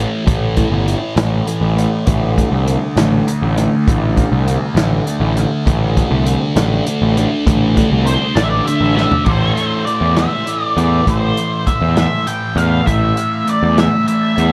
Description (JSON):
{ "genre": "psychedelic rock", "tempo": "67 BPM (dotted quarters)", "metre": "6/8", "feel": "straight", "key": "A minor", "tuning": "A4 = 440 Hz", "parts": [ { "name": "thick fuzz guitar", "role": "riff", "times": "0.0-14.5 s", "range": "A2 to D4", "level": "-21 LUFS", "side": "equal", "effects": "distortion, phaser, analog delay" }, { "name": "fuzz picked electric bass", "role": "bass", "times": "0.0-14.5 s", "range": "G1 to E2", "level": "-18 LUFS", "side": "equal", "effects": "overdrive" }, { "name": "vintage drum kit", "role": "drums", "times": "0.3-14.5 s", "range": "crash cymbal, hi-hat, kick drum, snare drum, toms", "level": "-22 LUFS", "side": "equal", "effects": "analog delay" }, { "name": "octave-fuzz lead guitar", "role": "melody", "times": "8.1-14.5 s", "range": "C5 to G5", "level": "-21 LUFS", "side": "equal", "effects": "wah, distortion, analog delay" } ], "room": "studio reverb", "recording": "echo-heavy mix", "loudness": "-15 LUFS", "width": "mono", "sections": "0.0-9.3 A section; 9.3-14.5 B section", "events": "drum fill 9.0-9.3", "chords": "0.0 A5; 2.1 D5/A; 9.3 Am", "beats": "| 0.27 1.17 | 2.07 2.97 | 3.87 4.76 | 5.66 6.56 | 7.46 8.36 | 9.26 10.16 | 11.07 11.97 | 12.87 13.77" }